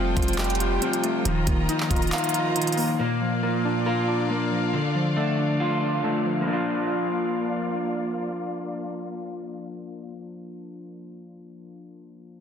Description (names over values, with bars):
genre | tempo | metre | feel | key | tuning
hip hop, trap | 138 BPM | 4/4 | half-time | Bb major | A4 = 443 Hz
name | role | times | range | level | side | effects
warbly lo-fi synth keys | accompaniment | 0.0-12.4 s | Bb2 to F5 | -28 LUFS | left 1 dB | chorus, low-pass filter
rich studio string section | sustained chords | 0.0-10.2 s | A3 to Bb5 | -32 LUFS | left 1 dB | low-pass filter
electric guitar at the edge of break-up | arpeggios | 0.0-10.2 s | D3 to Bb4 | -27 LUFS | equal | low-pass filter, digital delay
warm 808-style bass | bass | 0.0-2.1 s | Eb1 to F1 | -27 LUFS | equal | none
trap drum kit | drums | 0.2-2.9 s | handclaps, hi-hat, kick drum | -27 LUFS | right 1 dB | none
room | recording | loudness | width
moderate lush hall reverb, RT60 2.1 s | dense, heavily limited modern master | -22 LUFS | side -8 dB against mid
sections
0.0-3.0 A section; 3.0-6.5 B section; 6.5-9.9 C section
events
kick muted 2.1-3.0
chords
0.0 Fadd9; 1.3 Ebsus2; 3.0 Bb; 4.7 Dm; 6.5 Bb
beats
0.38 0.82 | 1.25 1.69 2.12 2.56 | 2.99 3.43 3.86 4.30 | 4.73 5.17 5.60 6.04 | 6.47 6.91 7.34 7.78 | 8.21 8.64 9.08 9.51